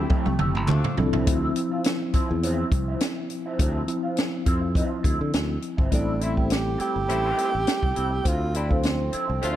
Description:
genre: lush 1970s-style soul.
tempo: 103 BPM.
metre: 4/4.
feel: swing 54% on 16ths.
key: D minor.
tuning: A4 = 440 Hz.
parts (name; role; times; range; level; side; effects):
breathy tenor saxophone; melody; 0.0-0.7, 5.9-9.6 s; C4 to G4; -28 LUFS; right 3 dB; none.
mellow tine electric piano; accompaniment; 0.0-9.6 s; F3 to A4; -29 LUFS; left 2 dB; medium stereo tremolo.
warm horn section; stabs; 0.0-1.0, 6.2-9.6 s; F3 to F4; -34 LUFS; left 3 dB; none.
modern bright fingered electric bass; bass; 0.0-9.6 s; F1 to D3; -27 LUFS; equal; none.
electric guitar through a small old amp; riff; 0.1-9.6 s; F3 to G4; -33 LUFS; right 2 dB; wah, spring reverb.
compact cocktail drum kit; drums; 0.1-9.6 s; hi-hat, kick drum, snare drum, toms; -25 LUFS; equal; none.
group handclap; percussion; 0.7-0.8 s; none; -39 LUFS; left 4 dB; none.
room: light reverb, small room ambience.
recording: dark, warm production.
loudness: -22 LUFS.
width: side -12 dB against mid.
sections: 0.0-1.3 A section; 1.3-5.9 B section; 5.9-9.6 C section.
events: drum fill 0.0-1.3; tine electric piano solo 1.3-5.9.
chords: 0.0 Fmaj9; 0.7 Dm9; 5.9 Am7; 8.3 Dm9.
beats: 0.11 0.69 | 1.27 1.85 2.43 3.01 | 3.59 4.17 4.75 5.34 | 5.92 6.50 7.09 7.67 | 8.25 8.84 9.42.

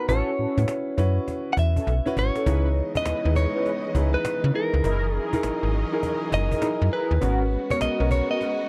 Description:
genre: R&B, new jack swing.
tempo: 101 BPM.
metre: 4/4.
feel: swing 64% on 16ths.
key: unclear.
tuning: A4 = 441 Hz.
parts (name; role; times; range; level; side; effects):
direct-recorded clean electric guitar; melody; 0.0-8.7 s; A#4 to F#5; -30 LUFS; equal; none.
warm grand piano; accompaniment; 0.0-8.7 s; B3 to B4; -31 LUFS; equal; none.
mellow synth brass; stabs; 0.1-8.5 s; B3 to B4; -34 LUFS; equal; chorus, phaser.
slap-like FM bass; bass; 0.1-8.2 s; F#1 to C#3; -25 LUFS; equal; none.
cajon; drums; 0.1-8.6 s; none; -35 LUFS; equal; none.
warm symphonic string section; sustained chords; 2.5-8.7 s; C#3 to D#5; -36 LUFS; equal; none.
room: little or no reverb.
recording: dry, close 1970s-style studio recording.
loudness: -24 LUFS.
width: mono.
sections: 0.0-2.5 A section; 2.5-8.7 B section.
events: drum fill 1.9-2.5.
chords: 0.1 A6; 2.5 C#m7; 4.8 F#13; 7.2 G#m11.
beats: | 0.09 0.68 1.28 1.87 | 2.46 3.06 3.65 4.25 | 4.84 5.43 6.03 6.62 | 7.22 7.81 8.40.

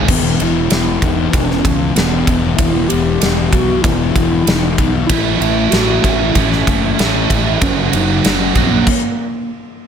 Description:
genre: rock, shoegaze and dream pop.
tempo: 96 BPM.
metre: 4/4.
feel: straight.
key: unclear.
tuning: A4 = 443 Hz.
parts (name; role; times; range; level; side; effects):
biting overdriven guitar; riff; 0.0-0.1, 5.1-8.9 s; F#2 to F#4; -18 LUFS; right 15 dB; reverse reverb.
thick fuzz guitar; riff; 0.0-8.9 s; E2 to A3; -19 LUFS; left 10 dB; distortion, wide subtle chorus.
fuzz fingered electric bass; bass; 0.0-8.8 s; E1 to C#2; -19 LUFS; equal; overdrive.
pure sine lead; melody; 0.1-9.5 s; A#3 to G4; -20 LUFS; right 1 dB; chorus, phaser, digital delay.
huge arena drum kit; drums; 0.1-9.0 s; crash cymbal, kick drum, ride cymbal, snare drum; -17 LUFS; equal; none.
room: small room ambience.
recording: none.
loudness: -12 LUFS.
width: side -8 dB against mid.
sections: 0.1-9.9 A section.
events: stop 8.9-9.9.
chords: 0.1 Em; 5.1 A; 7.6 F#.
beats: | 0.09 0.72 1.34 1.97 | 2.60 3.22 3.85 4.48 | 5.11 5.73 6.36 6.99 | 7.61 8.24 8.87 9.49.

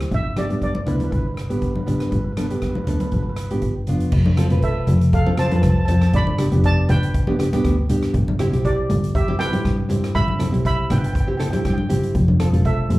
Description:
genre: calypso.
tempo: 120 BPM.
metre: 4/4.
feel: swing 53% on 16ths.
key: C major.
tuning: A4 = 440 Hz.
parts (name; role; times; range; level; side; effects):
nylon-string guitar; accompaniment; 0.0-13.0 s; B3 to B4; -26 LUFS; right 1 dB; slapback echo.
dark double bass; bass; 0.0-13.0 s; E1 to G2; -20 LUFS; equal; none.
street-band drum kit; drums; 0.0-13.0 s; crash cymbal, hi-hat, kick drum, rim click; -26 LUFS; equal; none.
steel pan; melody; 0.1-13.0 s; G4 to B5; -27 LUFS; right 2 dB; slapback echo.
congas; percussion; 0.4-13.0 s; none; -25 LUFS; left 1 dB; slapback echo.
room: little or no reverb.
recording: live gig heard through the venue's PA, club reverb.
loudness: -17 LUFS.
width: side -18 dB against mid.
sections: 0.0-4.1 A section; 4.1-13.0 B section.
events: none.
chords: 0.1 G; 4.1 Fmaj7; 6.1 G7; 8.1 Cmaj7/G; 12.1 Fmaj7.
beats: | 0.11 0.61 1.12 1.62 | 2.12 2.63 3.13 3.63 | 4.13 4.64 5.14 5.64 | 6.14 6.64 7.14 7.64 | 8.14 8.64 9.14 9.64 | 10.15 10.65 11.15 11.65 | 12.15 12.65.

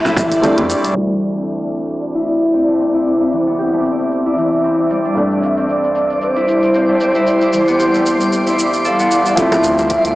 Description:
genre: organic downtempo.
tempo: 114 BPM.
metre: 4/4.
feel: swing 55% on 16ths.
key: unclear.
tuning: A4 = 440 Hz.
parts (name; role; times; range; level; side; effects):
breathy mellow low ney; melody; 0.0-0.4, 5.2-10.2 s; C5 to F5; -18 LUFS; equal; digital delay.
felt-muted upright piano; accompaniment; 0.0-10.2 s; D2 to E4; -22 LUFS; right 1 dB; sidechain pumping, low-pass filter, digital delay.
granular cloud pad; sustained chords; 0.0-10.2 s; G3 to C6; -22 LUFS; equal; built-in reverb, sidechain pumping.
concert harp; arpeggios; 0.0-10.2 s; E3 to A4; -16 LUFS; left 1 dB; low-pass filter, digital delay.
frame drum; percussion; 0.0-0.3, 9.5-9.6 s; none; -18 LUFS; right 1 dB; none.
electronic shaker, hi-hat and congas; drums; 0.1-10.1 s; none; -27 LUFS; right 1 dB; low-pass filter on hats, low-pass filter on perc, low-pass filter on snare.
warm sub bass; bass; 0.2-0.9, 9.6-10.1 s; F1 to F2; -28 LUFS; equal; tube saturation.
electronic kick drum; drums; 0.2-0.4, 9.4-10.0 s; none; -27 LUFS; equal; none.
twinkling granular texture; texture; 1.7-10.2 s; D5 to C6; -24 LUFS; right 1 dB; built-in reverb.
room: wet lush hall reverb, RT60 1.9 s, studio ambience.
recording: blown-out, overdriven recording, overdrive, low-pass filter, small speaker sound.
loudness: -13 LUFS.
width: side -17 dB against mid.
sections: 1.0-9.4 A section.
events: filter sweep on harp 1.0-9.4; filter sweep on felt piano 1.0-9.4; filter sweep on ambient pad 1.0-9.4; filter sweep 1.0-9.4.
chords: 0.0 Fmaj7; 1.0 D5; 5.2 Gsus4; 9.4 G7sus4.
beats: 0.43 | 0.96 1.48 2.01 2.54 | 3.06 3.59 4.12 4.64 | 5.17 5.69 6.22 6.75 | 7.27 7.80 8.33 8.85 | 9.38 9.90.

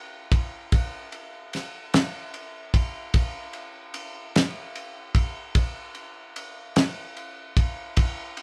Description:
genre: pop.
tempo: 50 BPM (dotted quarters).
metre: 6/8.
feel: straight.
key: none.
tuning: none.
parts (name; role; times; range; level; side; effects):
damped 70s drum kit; drums; 0.3-8.4 s; kick drum, ride cymbal, snare drum; -27 LUFS; equal; none.
room: light reverb.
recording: band playing live in one room.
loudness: -26 LUFS.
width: mono.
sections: 0.0-8.4 A section.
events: none.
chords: none.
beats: | 0.72 1.94 | 3.15 4.35 | 5.56 6.77 | 7.98.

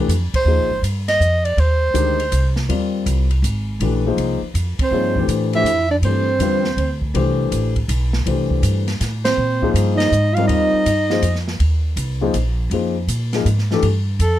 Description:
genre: modal jazz.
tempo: 162 BPM.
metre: 3/4.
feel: swing 66% on 8ths.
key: unclear.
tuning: A4 = 440 Hz.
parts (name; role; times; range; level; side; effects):
dark concert grand piano; accompaniment; 0.0-13.8 s; D3 to Eb5; -21 LUFS; left 5 dB; none.
upright bass; bass; 0.0-14.4 s; Ab1 to Bb2; -19 LUFS; equal; none.
open jazz drum kit; drums; 0.1-14.3 s; hi-hat, kick drum, ride cymbal, snare drum; -28 LUFS; equal; none.
breathy soprano saxophone; melody; 0.4-2.6, 4.8-7.0, 9.2-11.4, 14.2-14.4 s; A4 to F5; -20 LUFS; right 1 dB; none.
mellow trombone; second line; 4.8-7.0, 9.3-11.4 s; C4 to F4; -23 LUFS; right 5 dB; none.
room: light reverb.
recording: close, detailed microphones.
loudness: -16 LUFS.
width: side -12 dB against mid.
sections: 0.0-13.8 A section.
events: band accent 0.3, 4.7, 9.2.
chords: 0.5 Bb9sus4; 4.9 G9sus4; 9.4 Bb9sus4; 13.8 G7sus2.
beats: 0.09 | 0.46 0.83 1.21 | 1.58 1.95 2.32 | 2.69 3.06 3.43 | 3.80 4.17 4.55 | 4.92 5.29 5.66 | 6.03 6.40 6.77 | 7.14 7.52 7.89 | 8.26 8.63 9.00 | 9.37 9.74 10.12 | 10.49 10.86 11.23 | 11.60 11.97 12.34 | 12.71 13.09 13.46 | 13.83 14.20.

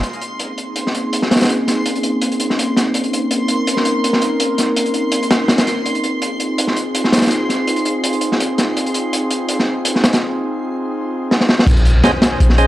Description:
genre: drum and bass, jungle.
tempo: 165 BPM.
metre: 4/4.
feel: straight.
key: Bb minor.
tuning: A4 = 440 Hz.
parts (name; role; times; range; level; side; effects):
airy breathy pad; sustained chords; 0.0-12.7 s; Bb3 to C5; -19 LUFS; equal; chorus.
warm 808-style bass; bass; 0.0, 11.7-12.7 s; Bb1; -12 LUFS; equal; tube saturation.
crunchy breakbeat drum kit; drums; 0.0-12.7 s; crash cymbal, hi-hat, kick drum, snare drum; -17 LUFS; equal; high-pass filter on kick, high-pass filter on hats, high-pass filter on cymbals, high-pass filter on snare, high-pass filter on room.
backwards swelling texture; texture; 0.0-12.7 s; Ab5 to C6; -27 LUFS; right 2 dB; built-in reverb.
impact; sound effects; 11.9-12.7 s; none; -24 LUFS; equal; none.
percussive tonewheel organ; stabs; 12.0-12.7 s; Db4 to Eb5; -20 LUFS; right 1 dB; overdrive, stopped rotary speaker, dub echo.
room: moderate digital room reverb, RT60 1.0 s, small room ambience.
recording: dry, gritty hardware recording, cassette tape.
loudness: -14 LUFS.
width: side -14 dB against mid.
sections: 0.0-11.7 A section.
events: filter sweep on analog synth pad 0.0-11.7; drum fill 11.3-11.7; impact 11.7-12.7.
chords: 0.0 Bbm11; 5.9 Fm7; 11.7 Bbm11.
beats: | 0.04 0.40 0.76 1.13 | 1.49 1.85 2.22 2.58 | 2.95 3.31 3.67 4.04 | 4.40 4.76 5.13 5.49 | 5.86 6.22 6.58 6.95 | 7.31 7.67 8.04 8.40 | 8.76 9.13 9.49 9.86 | 10.22 10.58 10.95 11.31 | 11.67 12.04 12.40.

